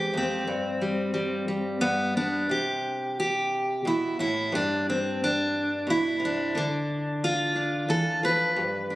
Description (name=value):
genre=folk, solo fingerstyle acoustic guitar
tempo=89 BPM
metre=3/4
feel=straight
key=C major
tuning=A4 = 440 Hz
part: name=fingerpicked steel-string acoustic guitar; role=solo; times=0.0-9.0 s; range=E2 to B4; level=-24 LUFS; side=equal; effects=none
room=light reverb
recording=recorded on a phone in the room, club reverb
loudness=-24 LUFS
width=side -17 dB against mid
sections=0.0-2.5 A section; 2.5-9.0 B section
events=none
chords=0.5 N.C.; 1.8 G; 2.5 C5; 4.5 G; 6.5 Dm